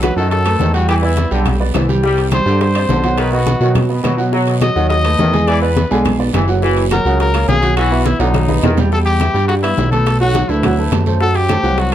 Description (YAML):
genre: latin, salsa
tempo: 209 BPM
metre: 4/4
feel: straight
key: E minor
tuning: A4 = 439 Hz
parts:
  - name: clear trumpet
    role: melody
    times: 0.0-11.9 s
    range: D#4 to D#5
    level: -19 LUFS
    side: left 2 dB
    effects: none
  - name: clear baby grand piano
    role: accompaniment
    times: 0.0-11.9 s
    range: F#3 to G#5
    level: -19 LUFS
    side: right 3 dB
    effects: none
  - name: fat analog bass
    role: bass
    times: 0.0-11.9 s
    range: F#1 to B2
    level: -16 LUFS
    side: equal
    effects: none
  - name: bongos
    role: percussion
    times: 0.0-11.9 s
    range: none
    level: -26 LUFS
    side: left 7 dB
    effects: none
  - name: claves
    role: percussion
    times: 0.0-11.6 s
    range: none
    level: -32 LUFS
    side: left 7 dB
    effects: none
  - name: congas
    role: percussion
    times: 0.0-11.9 s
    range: none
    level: -22 LUFS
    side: left 2 dB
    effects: none
  - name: guiro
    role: percussion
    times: 0.0-11.9 s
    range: none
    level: -33 LUFS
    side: right 6 dB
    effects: none
  - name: timbales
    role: percussion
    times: 0.0-11.9 s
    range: none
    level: -26 LUFS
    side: right 7 dB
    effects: none
  - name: brilliant trombone section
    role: second line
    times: 0.2-8.8 s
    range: C#3 to G3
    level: -22 LUFS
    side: left 2 dB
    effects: none
room: light reverb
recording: dark, warm production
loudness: -12 LUFS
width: side -11 dB against mid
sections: 0.0-8.9 A section; 8.9-11.9 B section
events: drum fill 8.2-8.9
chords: 0.0 B7; 0.9 Em7; 2.0 Csus2; 3.2 B; 4.3 B7; 5.5 E7; 6.6 F#; 7.8 Bsus4; 8.3 B; 8.9 Em; 10.1 Bm7; 11.2 F#dim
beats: 0.03 0.32 0.60 | 0.89 1.18 1.46 1.75 | 2.04 2.32 2.61 2.90 | 3.18 3.47 3.76 4.04 | 4.33 4.62 4.91 5.19 | 5.48 5.77 6.05 6.34 | 6.63 6.91 7.20 7.49 | 7.77 8.06 8.35 8.63 | 8.92 9.20 9.49 9.78 | 10.06 10.35 10.64 10.92 | 11.21 11.49 11.78